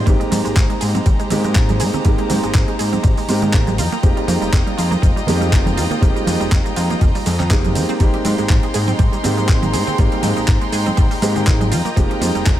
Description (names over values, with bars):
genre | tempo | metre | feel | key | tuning
nu-disco, nu disco | 121 BPM | 4/4 | swing 56% on 16ths | Ab major | A4 = 440 Hz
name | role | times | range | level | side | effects
warm concert grand piano | accompaniment | 0.0-12.6 s | Ab3 to G4 | -22 LUFS | right 1 dB | vintage 12-bit sampler grit, sidechain pumping, ping-pong delay
warm symphonic violin section | sustained chords | 0.0-12.6 s | Ab3 to C6 | -25 LUFS | equal | sidechain pumping
wide unison pluck | arpeggios | 0.1-12.5 s | F3 to Ab4 | -26 LUFS | right 4 dB | sidechain pumping, dub echo
fat analog bass | bass | 0.1-12.6 s | F1 to Ab2 | -20 LUFS | equal | none
dusty soul sampler-style drum kit | drums | 0.1-12.6 s | handclaps, hi-hat, ride cymbal, shaker | -26 LUFS | right 1 dB | overdrive, small room reverb
electronic kick drum | drums | 0.1-12.6 s | none | -15 LUFS | equal | overdrive, small room reverb
congas | percussion | 0.3-12.3 s | none | -25 LUFS | right 4 dB | none
room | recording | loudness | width
little or no reverb | none | -14 LUFS | side -12 dB against mid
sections
0.0-12.6 A section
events
none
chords
0.1 Abmaj9; 3.8 Fm11; 8.0 Abmaj9; 11.7 Fm11